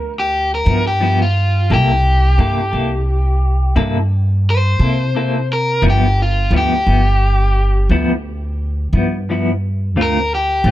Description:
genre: slow blues.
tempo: 58 BPM (dotted quarters).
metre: 12/8.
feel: straight.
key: unclear.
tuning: A4 = 438 Hz.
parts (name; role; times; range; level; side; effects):
overdriven electric guitar; melody; 0.0-10.7 s; F4 to C5; -18 LUFS; left 1 dB; none.
upright bass; bass; 0.0-10.7 s; G1 to C3; -16 LUFS; equal; none.
clean electric guitar; accompaniment; 0.6-10.7 s; G2 to A4; -20 LUFS; left 2 dB; tremolo, plate reverb.
room: little or no reverb.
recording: none.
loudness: -13 LUFS.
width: side -14 dB against mid.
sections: 0.0-10.7 A section.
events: overdriven electric guitar solo 0.0-10.7.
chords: 0.0 G6; 1.7 C6; 5.8 G6; 10.0 Dm7.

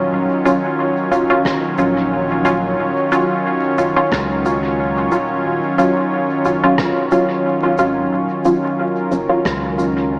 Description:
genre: ambient dub.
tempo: 90 BPM.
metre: 4/4.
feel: swing 54% on 16ths.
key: Eb minor.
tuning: A4 = 440 Hz.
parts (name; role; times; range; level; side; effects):
warm analog pad; sustained chords; 0.0-10.2 s; Eb3 to Db5; -20 LUFS; equal; chorus.
soft dub sub bass; bass; 0.0-10.2 s; Eb1 to Db2; -30 LUFS; equal; tube saturation.
filtered dub chord stab; stabs; 0.5-9.9 s; Gb3 to F4; -21 LUFS; equal; chorus, dub echo.
shaker and rim click; drums; 0.5-9.9 s; none; -28 LUFS; equal; dub echo.
electronic kick drum; drums; 1.5-9.6 s; none; -28 LUFS; equal; overdrive.
room: moderate plate reverb, RT60 2.9 s.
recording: echo-heavy mix, vinyl crackle, small speaker sound.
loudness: -17 LUFS.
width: mono.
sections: 0.0-10.2 A section.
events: none.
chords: 0.0 Ebm9.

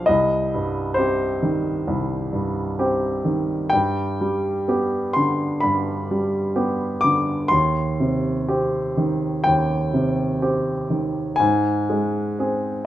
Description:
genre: classical, romantic nocturne for solo piano.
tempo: 60-68 BPM.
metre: 4/4.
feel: rubato.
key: C minor.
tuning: A4 = 440 Hz.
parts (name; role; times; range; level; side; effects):
warm grand piano; solo; 0.0-12.9 s; B1 to D6; -19 LUFS; equal; none.
room: moderate large studio reverb, RT60 0.9 s.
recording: close, detailed microphones.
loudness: -19 LUFS.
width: side -13 dB against mid.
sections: 0.0-12.9 A section.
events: none.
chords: 0.1 Cm; 3.7 G; 7.5 Cm/Eb; 11.4 Ab.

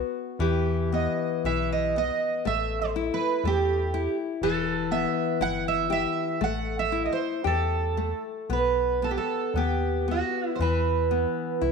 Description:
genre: fado-style ballad.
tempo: 56-62 BPM.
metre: 2/4.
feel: rubato.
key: E harmonic minor.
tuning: A4 = 440 Hz.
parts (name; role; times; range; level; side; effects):
nylon-string guitar; accompaniment; 0.0-11.7 s; E3 to B4; -29 LUFS; left 10 dB; none.
metallic FM bass; bass; 0.0-11.7 s; E1 to E2; -29 LUFS; left 1 dB; none.
fingerpicked twelve-string acoustic guitar; melody; 0.4-11.7 s; F#4 to F#5; -27 LUFS; right 8 dB; none.
room: moderate echo chamber reverb, RT60 1.5 s, small room ambience.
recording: 1960s-style stereo with parts hard left and right.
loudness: -24 LUFS.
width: side -5 dB against mid.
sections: 0.0-11.7 A section.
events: nylon-string guitar fill 0.0-0.4.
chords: 0.4 E5; 2.5 A5; 4.4 Em; 6.4 A5; 8.5 B; 10.6 E5.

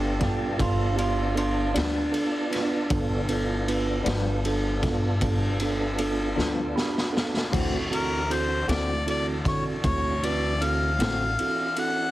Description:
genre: slow blues.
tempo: 52 BPM (dotted quarters).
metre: 12/8.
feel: straight.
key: G mixolydian.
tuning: A4 = 440 Hz.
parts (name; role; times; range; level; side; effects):
electric guitar through a small old amp; second line; 0.0-3.2 s; D4 to G4; -29 LUFS; right 2 dB; none.
mellow tine electric piano; accompaniment; 0.0-12.1 s; B3 to B5; -30 LUFS; right 3 dB; none.
tonewheel organ; sustained chords; 0.0-12.1 s; E3 to A5; -33 LUFS; equal; slow rotary speaker, overdrive, chorus vibrato.
upright bass; bass; 0.0-11.3 s; G1 to D3; -28 LUFS; equal; none.
raw garage drum kit; drums; 0.2-11.9 s; crash cymbal, kick drum, ride cymbal, snare drum; -30 LUFS; equal; none.
semi-hollow electric guitar; accompaniment; 1.7-11.2 s; G2 to F#4; -34 LUFS; left 5 dB; harmonic tremolo.
clear harmonica; melody; 7.9-12.1 s; Bb4 to F#5; -27 LUFS; left 2 dB; overdrive.
room: moderate spring reverb, RT60 1.9 s.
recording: heavily compressed radio sound, multiband compression.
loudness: -23 LUFS.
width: side -15 dB against mid.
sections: 0.0-12.1 A section.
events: drum fill 6.4-7.5; tine electric piano fill 6.4-7.5.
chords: 0.0 G7; 7.5 D7.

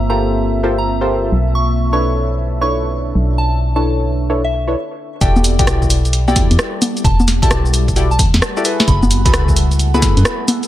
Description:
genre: UK garage, two-step garage.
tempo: 131 BPM.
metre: 4/4.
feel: swing 65% on 16ths.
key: E dorian.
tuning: A4 = 442 Hz.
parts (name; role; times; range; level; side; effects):
warm analog pad; sustained chords; 0.0-4.8 s; E5; -29 LUFS; right 1 dB; chorus, sidechain pumping.
deep mellow chord stab; stabs; 0.0-10.7 s; D4 to D5; -21 LUFS; left 1 dB; chorus, dub echo.
organ-like FM bass; bass; 0.0-10.2 s; E1 to F#2; -16 LUFS; equal; none.
deep dark ambient pad; texture; 0.0-10.7 s; G3 to A5; -26 LUFS; equal; chorus, built-in reverb, sidechain pumping.
soft synth bell; melody; 0.1-10.1 s; E5 to C#6; -24 LUFS; equal; chorus, digital delay.
electronic kick drum; drums; 5.2-10.1 s; none; -16 LUFS; equal; none.
punchy analog drum machine; drums; 5.2-10.7 s; cabasa, congas, hi-hat, rim click, snare drum; -17 LUFS; equal; none.
room: digital ambience.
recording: none.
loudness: -12 LUFS.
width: side -13 dB against mid.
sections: 0.0-5.2 A section; 5.2-10.7 B section.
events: filter sweep on analog synth pad 0.0-5.2; stop 4.8-5.2; drop 5.2-10.7.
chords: 0.0 Gm11; 1.3 Bm11; 5.2 Em11; 8.6 F#m11.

